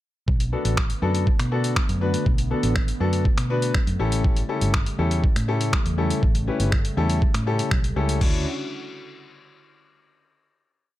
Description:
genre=dance-pop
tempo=121 BPM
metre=4/4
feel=straight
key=D major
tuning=A4 = 440 Hz
part: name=warm analog pad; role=sustained chords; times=0.3-8.4 s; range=C#3 to F#4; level=-31 LUFS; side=right 1 dB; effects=chorus, sidechain pumping
part: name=vintage muted fingered electric bass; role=bass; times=0.3-8.4 s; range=G1 to B2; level=-24 LUFS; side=equal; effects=sidechain pumping
part: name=boom bap sampler-style drum kit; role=drums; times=0.3-8.3 s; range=crash cymbal, finger snaps, hi-hat, kick drum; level=-23 LUFS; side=equal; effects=none
part: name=warm concert grand piano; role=accompaniment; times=0.5-8.4 s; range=B3 to C#5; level=-27 LUFS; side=left 4 dB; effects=sidechain pumping
room=little or no reverb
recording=none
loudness=-20 LUFS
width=side -15 dB against mid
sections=0.3-8.2 pre-chorus; 8.2-10.2 final chord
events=none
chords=0.3 Bm7; 4.0 A7; 8.2 Dmaj9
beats=| 0.28 0.77 1.27 1.77 | 2.26 2.76 3.25 3.75 | 4.25 4.74 5.24 5.73 | 6.23 6.72 7.22 7.72 | 8.21

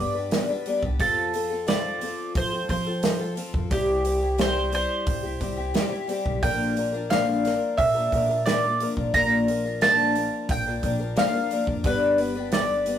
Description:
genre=folk rock and heartland rock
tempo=89 BPM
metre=4/4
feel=straight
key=unclear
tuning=A4 = 440 Hz
part: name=mandolin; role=melody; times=0.0-13.0 s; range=G4 to Bb5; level=-25 LUFS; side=right 2 dB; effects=none
part: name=picked twelve-string acoustic guitar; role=accompaniment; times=0.0-13.0 s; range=G2 to B4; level=-26 LUFS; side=left 3 dB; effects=none
part: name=upright bass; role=bass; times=0.0-13.0 s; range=G1 to F3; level=-32 LUFS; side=equal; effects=none
part: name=natural country drum kit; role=drums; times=0.3-13.0 s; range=hi-hat, kick drum, snare drum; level=-28 LUFS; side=right 2 dB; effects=none
room=moderate small room ambience, RT60 0.5 s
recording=rough rehearsal-room recording, warm saturation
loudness=-22 LUFS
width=side -10 dB against mid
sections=0.0-13.0 A section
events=none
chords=0.0 G; 1.0 F; 3.7 C; 6.4 Bb; 11.8 G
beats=0.32 | 1.00 1.68 2.36 3.04 | 3.71 4.39 5.07 5.75 | 6.43 7.10 7.78 8.46 | 9.13 9.81 10.49 11.16 | 11.84 12.51

